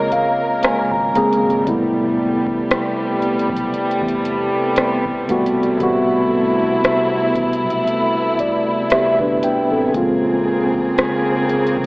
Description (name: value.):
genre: contemporary R&B.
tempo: 58 BPM.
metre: 4/4.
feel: swing 54% on 16ths.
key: unclear.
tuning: A4 = 440 Hz.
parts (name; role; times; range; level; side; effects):
mellow tine electric piano; accompaniment; 0.0-11.9 s; C3 to Bb5; -18 LUFS; equal; medium stereo tremolo.
warm chamber string section; sustained chords; 0.0-11.9 s; C3 to Bb4; -19 LUFS; equal; none.
booming analog drum machine; drums; 0.1-11.9 s; hi-hat, kick drum, rim click; -22 LUFS; equal; overdrive.
vintage muted fingered electric bass; bass; 0.6-11.9 s; G1 to E2; -32 LUFS; equal; none.
room: wet plate reverb, RT60 3.0 s.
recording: dreamy mix soaked in reverb, AM radio sound.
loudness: -15 LUFS.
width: side -25 dB against mid.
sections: 0.0-11.9 A section.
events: tine electric piano fill 0.0-1.7, 7.9-9.9.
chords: 0.0 Bbm9; 1.7 Am9; 9.9 Bbm9.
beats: 0.63 | 1.67 2.70 3.74 4.77 | 5.81 6.84 7.88 8.91 | 9.94 10.98.